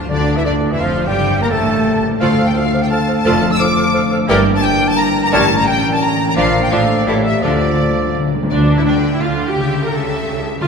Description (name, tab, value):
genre	classical, dramatic, fast romantic movement for symphony orchestra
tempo	172 BPM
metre	3/4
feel	straight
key	D minor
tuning	A4 = 440 Hz
part	rich symphonic violin section	melody	0.0-10.7 s	C#5 to E6	-22 LUFS	left 2 dB	none
part	bright symphonic violin section	second line	0.0-10.7 s	D4 to G5	-28 LUFS	left 3 dB	none
part	clear symphonic viola section	accompaniment	0.0-10.7 s	D3 to Bb4	-23 LUFS	right 2 dB	none
part	concert harp	arpeggios	0.0-10.7 s	F2 to E5	-22 LUFS	left 3 dB	none
part	rich symphonic cello section	bass	0.0-10.7 s	D2 to D3	-23 LUFS	right 2 dB	none
part	rich symphonic double bass section	bass	0.0-10.7 s	F1 to D2	-23 LUFS	right 2 dB	none
part	concert flute	second line	0.1-8.1 s	C#5 to E6	-22 LUFS	left 1 dB	none
part	warm clarinet	second line	0.1-8.3 s	D4 to Bb4	-26 LUFS	left 1 dB	none
part	warm oboe	second line	0.1-8.3 s	C#5 to Bb5	-26 LUFS	right 2 dB	none
part	dark bassoon	accompaniment	0.1-8.3 s	D3 to Bb3	-23 LUFS	right 1 dB	none
part	dark French horn section	sustained chords	0.1-8.3 s	D3 to G4	-21 LUFS	left 1 dB	none
part	timpani	percussion	0.1-0.6, 7.4-10.7 s	D3	-23 LUFS	left 2 dB	none
room	wet cathedral reverb, RT60 4.7 s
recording	recorded in a church or concert hall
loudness	-13 LUFS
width	side -5 dB against mid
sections	0.1-8.5 A section; 8.5-10.7 A section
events	timpani fill 7.4-8.5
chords	0.1 Dm; 1.2 A7/G; 2.2 Dm; 3.2 Dm/F; 4.3 Em7b5/G; 5.3 A7b9; 6.4 Bb; 6.7 Dm/A; 7.1 A7; 7.4 Dm; 9.6 A7/C#